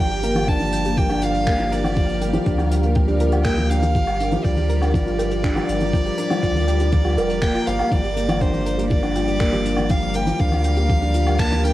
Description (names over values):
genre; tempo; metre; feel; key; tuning
piano and strings electronica; 121 BPM; 4/4; straight; G minor; A4 = 440 Hz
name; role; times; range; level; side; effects
warm violin; melody; 0.0-11.7 s; C5 to A5; -26 LUFS; equal; cassette tape, shimmer reverb
granular cloud pad; sustained chords; 0.0-11.7 s; G3 to F5; -29 LUFS; right 1 dB; built-in reverb, cassette tape, shimmer reverb
soft round pluck; arpeggios; 0.0-11.7 s; F4 to G5; -33 LUFS; right 2 dB; chorus, sidechain pumping, cassette tape, tape echo, shimmer reverb
felt-muted upright piano; riff; 0.0-11.7 s; F3 to F5; -22 LUFS; left 1 dB; cassette tape, shimmer reverb
warm sub bass; bass; 0.0-11.7 s; F1 to D2; -23 LUFS; equal; sidechain pumping
soft brush drum kit; drums; 0.1-11.7 s; finger snaps, hi-hat, woodblock; -32 LUFS; left 1 dB; cassette tape
electronic kick drum; drums; 0.5-11.5 s; none; -22 LUFS; equal; cassette tape
room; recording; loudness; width
moderate studio reverb, RT60 0.6 s; home recording on cassette; -17 LUFS; side -15 dB against mid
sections
0.0-11.7 A section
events
none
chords
0.0 Gm7; 4.0 Bb/G; 7.9 Gm7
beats
0.48 0.98 1.47 | 1.97 2.46 2.96 3.46 | 3.95 4.45 4.94 5.44 | 5.94 6.43 6.93 7.42 | 7.92 8.41 8.91 9.41 | 9.90 10.40 10.89 11.39